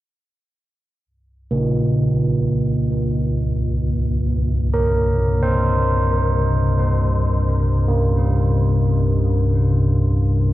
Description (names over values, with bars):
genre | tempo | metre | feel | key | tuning
dark ambient drone | free time | none | none | unclear | A4 = 440 Hz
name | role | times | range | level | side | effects
deep rumbling drone | drone | 2.2-10.5 s | C2 to G2 | -18 LUFS | equal | built-in reverb
carillon bells | arpeggios | 1.5-10.5 s | Bb2 to C5 | -21 LUFS | right 1 dB | ping-pong delay
room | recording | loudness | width
wet cathedral reverb, RT60 6.0 s | worn, warbling old tape, cassette tape, warbly pitch drift | -16 LUFS | side -15 dB against mid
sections
1.1-10.5 A section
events
fade-out on church bells 1.1-10.5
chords
1.1 Gmadd11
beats
free time